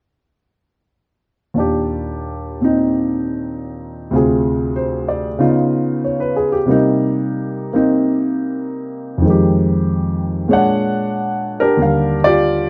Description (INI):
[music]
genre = solo jazz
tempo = 94 BPM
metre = 4/4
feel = swing 67% on 8ths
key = Eb major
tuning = A4 = 442 Hz
[part]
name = warm grand piano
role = solo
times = 1.5-12.7 s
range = D2 to F#5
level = -17 LUFS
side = equal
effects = none
[sound]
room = light reverb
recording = close, detailed microphones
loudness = -17 LUFS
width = mono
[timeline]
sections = 1.6-11.8 A section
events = none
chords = 1.6 Ebmaj7; 4.1 Dm7b5; 5.4 Db9; 6.7 Cm7; 9.2 Fm9; 10.5 Bb7alt; 11.8 Ebmaj9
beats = | 1.56 2.20 2.84 3.48 | 4.12 4.76 5.40 6.04 | 6.68 7.32 7.96 8.60 | 9.24 9.88 10.52 11.16 | 11.80 12.44